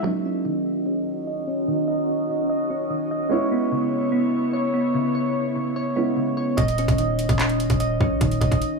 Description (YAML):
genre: hip hop, trap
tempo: 147 BPM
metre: 4/4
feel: half-time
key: Eb phrygian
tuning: A4 = 438 Hz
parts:
  - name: dark concert grand piano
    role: accompaniment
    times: 0.0-6.6 s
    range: Gb3 to Fb4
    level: -28 LUFS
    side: right 6 dB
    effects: low-pass filter
  - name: glassy FM pad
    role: sustained chords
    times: 0.0-6.5 s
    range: Cb4 to Eb5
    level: -27 LUFS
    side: equal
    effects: ensemble chorus, built-in reverb, low-pass filter
  - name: soft electric-piano-like synth keys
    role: arpeggios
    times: 0.0-8.8 s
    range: Db3 to Eb5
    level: -24 LUFS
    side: left 1 dB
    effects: chorus, low-pass filter, tape echo
  - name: warm 808-style bass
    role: bass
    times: 6.6-8.6 s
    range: Eb1 to Bb1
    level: -24 LUFS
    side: equal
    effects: none
  - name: trap drum kit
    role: drums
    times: 6.6-8.7 s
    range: handclaps, hi-hat, kick drum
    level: -23 LUFS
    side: equal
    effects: none
room: light reverb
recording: none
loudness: -20 LUFS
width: side -3 dB against mid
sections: 0.0-6.6 A section; 6.6-8.8 B section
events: filter sweep 0.0-6.6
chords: 0.0 Ebm7; 3.3 Dbm7; 6.6 Eb5